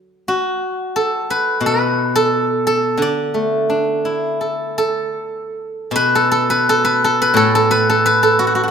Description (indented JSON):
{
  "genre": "chinese traditional, Chinese solo plucked strings",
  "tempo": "77-90 BPM",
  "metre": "4/4",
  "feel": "rubato",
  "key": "unclear",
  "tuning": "A4 = 440 Hz",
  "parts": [
    { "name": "steel-string zither", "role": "solo", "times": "0.3-8.7 s", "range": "A2 to D5", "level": "-14 LUFS", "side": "equal", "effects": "none" }
  ],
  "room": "light reverb",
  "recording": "minimal, uncompressed stereo recording",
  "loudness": "-14 LUFS",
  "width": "side -7 dB against mid",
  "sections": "0.0-5.9 A section; 5.9-8.7 B section",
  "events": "none",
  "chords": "none"
}